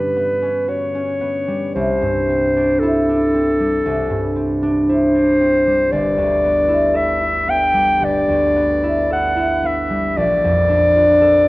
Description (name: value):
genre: classical, impressionist duo for clarinet and harp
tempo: 57 BPM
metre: 4/4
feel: rubato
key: unclear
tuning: A4 = 441 Hz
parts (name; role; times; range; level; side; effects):
- warm clarinet; melody; 0.0-11.5 s; A4 to G5; -16 LUFS; left 1 dB; none
- concert harp; accompaniment; 0.0-11.5 s; G1 to A4; -18 LUFS; right 1 dB; none
room: moderate concert hall reverb, RT60 2.4 s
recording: worn, warbling old tape, cassette tape, warbly pitch drift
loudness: -14 LUFS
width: side -19 dB against mid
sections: 0.0-11.5 A section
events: none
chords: 0.0 Gmaj7#11; 1.7 C69; 5.9 G69; 10.2 Bbmaj7